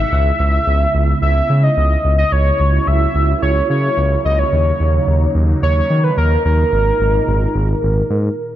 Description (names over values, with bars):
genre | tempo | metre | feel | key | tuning
synth-pop | 109 BPM | 4/4 | straight | C# dorian | A4 = 442 Hz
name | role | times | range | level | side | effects
warm velvety synth lead | melody | 0.0-8.3 s | A#4 to E5 | -18 LUFS | equal | chorus, digital delay
phased analog pad | sustained chords | 0.0-8.4 s | A#2 to E4 | -23 LUFS | right 2 dB | phaser, chorus
smooth synth bass | bass | 0.0-8.3 s | G#1 to D#3 | -15 LUFS | equal | none
room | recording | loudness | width
light reverb | dark, warm production | -13 LUFS | side -12 dB against mid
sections
0.0-8.6 A section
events
stop 8.4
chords
0.1 C#m7; 2.3 F#7/C#; 4.5 D#m7; 6.7 G#sus2